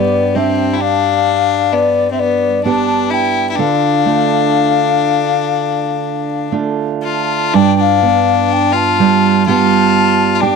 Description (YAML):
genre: celtic folk, Celtic slow air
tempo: 57-65 BPM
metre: 4/4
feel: rubato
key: unclear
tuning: A4 = 439 Hz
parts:
  - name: mellow baroque flute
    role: melody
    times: 0.0-10.6 s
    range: D5 to A5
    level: -15 LUFS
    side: left 4 dB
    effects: none
  - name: bright fiddle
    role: second line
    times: 0.0-10.6 s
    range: B3 to F4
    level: -17 LUFS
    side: left 10 dB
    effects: none
  - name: fingerpicked steel-string acoustic guitar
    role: accompaniment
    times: 0.0-10.6 s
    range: G2 to G4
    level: -16 LUFS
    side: right 8 dB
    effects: none
room: studio reverb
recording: dry, close 1970s-style studio recording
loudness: -11 LUFS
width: side -5 dB against mid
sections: 0.0-7.5 A section; 7.5-10.6 B section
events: none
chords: 0.0 G; 3.6 Dm; 7.5 G7